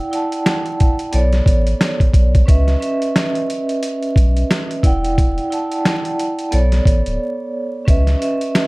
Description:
hip hop, boom-bap hip-hop; 89 BPM; 4/4; swing 57% on 16ths; C# phrygian; A4 = 438 Hz
vibraphone with medium mallets; accompaniment; 0.0-8.7 s; B3 to A5; -20 LUFS; right 1 dB; cassette tape, high-pass filter, low-pass filter
boom bap sampler-style drum kit; drums; 0.1-8.7 s; hi-hat, kick drum, snare drum; -16 LUFS; equal
soft dub sub bass; bass; 1.1-8.2 s; D1 to C#2; -16 LUFS; equal
little or no reverb; dark, warm production, vinyl crackle; -14 LUFS; side -24 dB against mid
0.0-8.7 A section
break 7.2-7.9
0.0 Em9; 1.1 Bm9; 2.5 C#m9; 4.8 Em9; 6.5 Bm9; 7.9 C#m9
0.46 1.13 1.81 | 2.48 3.16 3.83 4.50 | 5.18 5.85 6.53 7.20 | 7.88 8.55

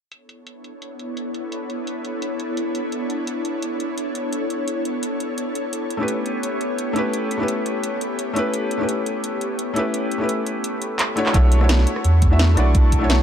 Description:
liquid drum and bass; 171 BPM; 4/4; swing 53% on 16ths; B minor; A4 = 440 Hz
ethereal airy pad; sustained chords; 0.6-13.2 s; B3 to C#6; -26 LUFS; left 1 dB; ensemble chorus, built-in reverb
drum and bass drum kit; drums; 0.1-13.2 s; handclaps, hi-hat, rim click, snare drum; -26 LUFS; right 1 dB; low-pass filter on hats, low-pass filter on snare, low-pass filter on room
felt-muted upright piano; accompaniment; 6.0-13.2 s; A3 to E5; -23 LUFS; left 1 dB; digital delay
warm sub bass; bass; 11.3-13.2 s; B1 to E2; -16 LUFS; equal
electronic kick drum; drums; 11.3-13.0 s; -17 LUFS; equal
light reverb, digital ambience; dark, warm production; -19 LUFS; side -9 dB against mid
0.1-11.3 A section; 11.3-13.2 B section
filter sweep on drum 0.1-11.3; drum fill 11.0-11.3; drop 11.3-13.2
0.1 Bm11; 5.7 A9; 11.3 Bm11
| 0.12 0.47 0.82 1.17 | 1.52 1.87 2.22 2.57 | 2.92 3.27 3.62 3.98 | 4.33 4.68 5.03 5.38 | 5.73 6.08 6.43 6.78 | 7.13 7.48 7.83 8.19 | 8.54 8.89 9.24 9.59 | 9.94 10.29 10.64 10.99 | 11.34 11.70 12.05 12.40 | 12.75 13.10

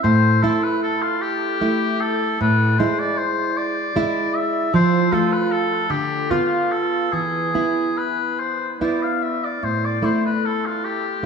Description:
romantic duo for oboe and classical guitar; 47-52 BPM (dotted quarters); 6/8; rubato; A minor; A4 = 440 Hz
warm oboe; melody; 0.0-11.3 s; F4 to F5; -22 LUFS; left 3 dB; analog delay
nylon-string guitar; accompaniment; 0.0-11.3 s; A2 to F4; -20 LUFS; right 2 dB; analog chorus
wet lush hall reverb, RT60 2.2 s; dreamy mix soaked in reverb; -18 LUFS; side -6 dB against mid
0.0-11.3 A section
0.0 A5; 2.4 E7/A; 4.7 F; 5.9 Bdim/D; 7.1 E; 9.6 A5
| 0.02 1.21 | 2.41 3.57 | 4.74 5.90 | 7.13 8.39 | 9.63 10.83

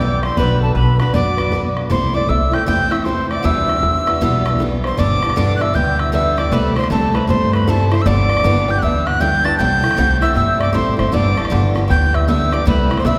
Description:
celtic folk, Celtic hornpipe; 156 BPM; 4/4; swing 63% on 8ths; E minor, G major from 5.0 s; A4 = 439 Hz
breathy mellow mid whistle; melody; 0.0-13.2 s; A5 to A6; -22 LUFS; equal
breathy hollow baroque flute; second line; 0.0-13.2 s; A4 to A5; -28 LUFS; equal
open-back banjo; second line; 0.0-13.2 s; A4 to A5; -30 LUFS; equal
picked steel-string acoustic guitar; accompaniment; 0.0-13.2 s; E2 to B4; -23 LUFS; equal
upright bass; bass; 0.0-13.2 s; G1 to G2; -21 LUFS; equal
bodhran; percussion; 0.2-13.2 s; -25 LUFS; equal
wet church reverb, RT60 3.7 s; recorded in a church or concert hall; -16 LUFS; mono
0.0-5.0 A section; 5.0-13.2 B section
0.4 Bm; 1.9 Am/C; 3.4 Em7; 5.0 G6; 6.5 C6; 8.1 G6; 9.6 C6; 11.1 G6; 12.7 C6
| 0.37 0.75 1.14 1.52 | 1.91 2.29 2.68 3.06 | 3.44 3.83 4.21 4.60 | 4.98 5.37 5.75 6.14 | 6.52 6.90 7.29 7.67 | 8.06 8.44 8.82 9.21 | 9.59 9.98 10.36 10.74 | 11.13 11.51 11.90 12.28 | 12.66 13.05

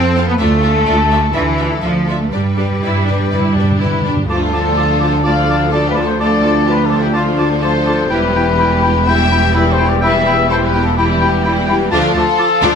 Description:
cinematic, heroic adventure film score; 126 BPM; 4/4; straight; A4 = 440 Hz
warm symphonic violin section; melody; 0.0-12.8 s; D4 to E5; -24 LUFS; left 4 dB
mellow trumpet section; stabs; 0.0-12.8 s; E4 to G5; -18 LUFS; left 3 dB
rich studio double bass section; bass; 0.0-12.7 s; E1 to G2; -18 LUFS; right 2 dB
rich symphonic cello section; bass; 0.0-12.7 s; D2 to C4; -19 LUFS; right 2 dB
clear symphonic violin section; second line; 0.2-12.8 s; A3 to F5; -24 LUFS; left 2 dB
rich symphonic viola section; accompaniment; 0.2-12.8 s; D3 to G4; -22 LUFS; right 1 dB
timpani; percussion; 2.3-4.2 s; G2; -22 LUFS; equal
bright oboe; second line; 4.3-12.7 s; G5 to A5; -24 LUFS; right 1 dB
silver concert flute; second line; 4.3-12.7 s; B5 to D6; -24 LUFS; left 3 dB
warm clarinet; second line; 4.3-12.7 s; E4 to F4; -25 LUFS; left 2 dB
warm French horn section; sustained chords; 4.3-12.8 s; E3 to G4; -21 LUFS; left 5 dB
moderate recital hall reverb, RT60 1.5 s; -12 LUFS; side -6 dB against mid
0.0-4.3 A section; 4.3-12.8 B section
timpani fill 2.3-4.3
0.4 Dmadd9; 2.3 G; 4.3 Dm; 8.1 Em; 11.9 Dm
| 0.39 0.86 1.35 1.83 | 2.32 2.82 3.31 3.81 | 4.29 4.77 5.25 5.73 | 6.21 6.68 7.16 7.64 | 8.12 8.59 9.07 9.55 | 10.02 10.50 10.97 11.44 | 11.91 12.39

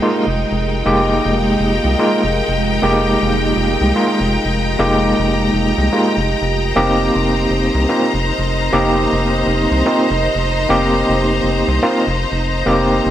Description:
deep house; 122 BPM; 4/4; swing 60% on 16ths; F minor; A4 = 442 Hz
deep dark ambient pad; sustained chords; 0.0-13.1 s; Ab3 to Eb5; -23 LUFS; right 2 dB; chorus, built-in reverb
overdriven tine electric piano; stabs; 0.0-13.1 s; Ab3 to G4; -17 LUFS; equal; fast tremolo, digital delay
bright studio string section; texture; 0.0-13.1 s; Ab3 to Bb5; -20 LUFS; left 1 dB
rubbery square bass; bass; 0.3-13.1 s; F1 to C2; -20 LUFS; equal
moderate lush hall reverb, RT60 2.8 s; bright 1980s-style digital production, vinyl crackle; -13 LUFS; side -11 dB against mid
0.0-13.1 A section
0.0 Fm11; 6.5 Cm7/F
0.12 | 0.61 1.11 1.60 2.09 | 2.58 3.07 3.56 4.06 | 4.55 5.04 5.53 6.02 | 6.52 7.01 7.50 7.99 | 8.48 8.97 9.47 9.96 | 10.45 10.94 11.43 11.93 | 12.42 12.91

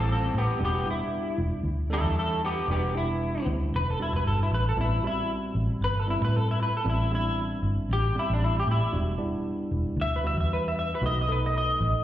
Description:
straight-eighth soul blues; 115 BPM; 4/4; swing 56% on 16ths; E minor; A4 = 444 Hz
electric guitar through a small old amp; melody; 0.0-12.0 s; B3 to E5; -29 LUFS; left 1 dB; analog chorus, slapback echo
tine electric piano; accompaniment; 0.0-12.0 s; G3 to A4; -34 LUFS; right 2 dB
vintage muted fingered electric bass; bass; 0.0-11.9 s; E1 to A2; -27 LUFS; equal
light reverb, digital ambience; live gig heard through the venue's PA, recital hall reverb; -24 LUFS; side -12 dB against mid
0.0-12.0 A section
clean electric guitar solo 0.0-12.0
0.0 Am9; 0.6 Em9; 4.8 Am9; 8.9 Em9; 11.0 B7
0.08 | 0.60 1.12 1.65 2.17 | 2.69 3.21 3.73 4.25 | 4.77 5.29 5.82 6.34 | 6.86 7.38 7.90 8.42 | 8.94 9.46 9.98 10.50 | 11.02 11.54

